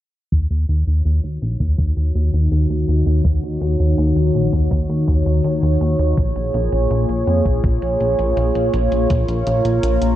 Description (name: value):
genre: synthwave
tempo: 82 BPM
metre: 4/4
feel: straight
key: Eb minor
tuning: A4 = 436 Hz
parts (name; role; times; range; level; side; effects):
- chorused pulse-width pad; sustained chords; 1.0-10.2 s; Eb3 to Db5; -20 LUFS; equal; sidechain pumping
- chorused synth bass; bass; 0.3-10.2 s; Bb1 to F2; -18 LUFS; equal; tube saturation
- electronic hi-hat; drums; 0.3-10.2 s; none; -43 LUFS; equal; none
- electronic kick drum; drums; 0.3-9.2 s; none; -20 LUFS; equal; none
room: light reverb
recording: low-pass filter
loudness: -16 LUFS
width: side -13 dB against mid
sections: 0.3-10.2 A section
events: filter sweep on analog synth bass 0.3-10.2; filter sweep on analog synth pad 0.3-10.2; filter sweep 0.3-10.2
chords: 0.3 Ebm7; 6.2 Bbm7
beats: | 0.32 1.05 1.78 2.52 | 3.25 3.98 4.71 5.44 | 6.17 6.91 7.64 8.37 | 9.10 9.83